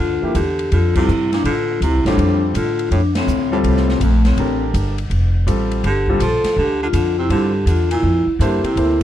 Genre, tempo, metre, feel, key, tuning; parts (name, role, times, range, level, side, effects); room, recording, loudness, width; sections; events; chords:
jazz, small-group swing and bop; 164 BPM; 4/4; swing 65% on 8ths; D minor; A4 = 440 Hz
vibraphone with medium mallets; melody; 0.0-9.0 s; A3 to A4; -19 LUFS; left 2 dB
clear baritone saxophone; second line; 0.0-9.0 s; F2 to F3; -24 LUFS; right 3 dB
upright bass; bass; 0.0-9.0 s; F1 to A2; -18 LUFS; equal
warm concert grand piano; accompaniment; 0.2-9.0 s; F3 to C5; -22 LUFS; equal
swinging big-band drum kit; drums; 0.3-9.0 s; crash cymbal, hi-hat, kick drum, ride cymbal, snare drum; -29 LUFS; equal
little or no reverb; dark, warm production; -15 LUFS; side -11 dB against mid
0.0-9.0 A section
band accent 0.9, 3.1
0.0 Dm7; 5.8 Gm7